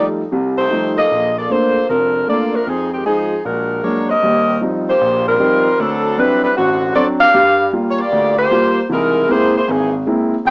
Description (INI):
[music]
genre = jazz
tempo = 154 BPM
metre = 4/4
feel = swing 66% on 8ths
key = Bb major, Eb major from 4.2 s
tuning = A4 = 440 Hz
[part]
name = warm saxophone section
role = melody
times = 0.0-10.5 s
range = D3 to G5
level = -14 LUFS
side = equal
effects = cassette tape
[part]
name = warm concert grand piano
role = accompaniment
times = 0.0-10.5 s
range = F1 to F4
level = -18 LUFS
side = equal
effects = cassette tape
[sound]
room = moderate spring reverb, RT60 1.3 s, small room ambience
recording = home recording on cassette, small speaker sound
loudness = -13 LUFS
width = side -32 dB against mid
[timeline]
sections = 0.0-4.2 A section; 4.2-10.5 B section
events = none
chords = 0.0 F9; 1.1 Bbmaj7; 2.7 Fm7; 3.4 Bbaug7; 4.2 Eb69; 5.8 D7; 7.3 Gm7; 8.9 C7alt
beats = 0.32 0.71 | 1.10 1.49 1.88 2.27 | 2.66 3.05 3.44 3.83 | 4.21 4.60 4.99 5.38 | 5.77 6.16 6.55 6.94 | 7.33 7.72 8.11 8.50 | 8.89 9.28 9.67 10.06 | 10.45